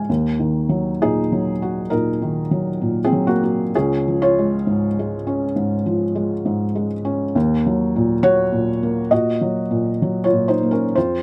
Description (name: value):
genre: neoclassical minimalist piano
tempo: 66 BPM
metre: 4/4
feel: rubato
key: Eb dorian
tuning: A4 = 441 Hz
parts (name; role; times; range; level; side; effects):
- felt-muted upright piano; solo; 0.0-11.2 s; Db2 to Ab5; -20 LUFS; equal; none
room: moderate booth ambience, RT60 0.2 s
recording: none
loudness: -20 LUFS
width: mono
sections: 0.1-11.2 A section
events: none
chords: 0.1 Ebm; 3.7 Db; 7.3 Ebm